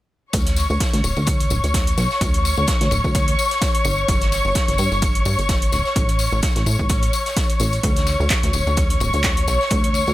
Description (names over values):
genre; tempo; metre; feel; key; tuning
piano house; 128 BPM; 4/4; swing 56% on 16ths; unclear; A4 = 440 Hz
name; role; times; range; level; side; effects
muted studio string section; sustained chords; 0.3-10.1 s; C#5 to C#6; -22 LUFS; left 1 dB; sidechain pumping
plucky analog bass; bass; 0.3-10.1 s; D1 to A2; -21 LUFS; equal; tube saturation, sidechain pumping
electronic kick drum; drums; 0.3-9.8 s; none; -21 LUFS; equal; overdrive
punchy analog drum machine; drums; 0.3-9.9 s; handclaps, hi-hat; -26 LUFS; right 2 dB; overdrive
vintage drum kit; drums; 0.3-10.1 s; ride cymbal, snare drum; -32 LUFS; left 1 dB; high-pass filter on cymbals, high-pass filter on snare, high-pass filter on room
tambourine; percussion; 0.3-10.1 s; none; -30 LUFS; left 6 dB; none
room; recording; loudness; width
small room ambience; none; -17 LUFS; side -15 dB against mid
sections
0.3-10.1 A section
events
none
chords
0.3 Bmadd9/D (rootless); 3.9 G5; 6.0 A; 7.8 Bmadd9/D (rootless)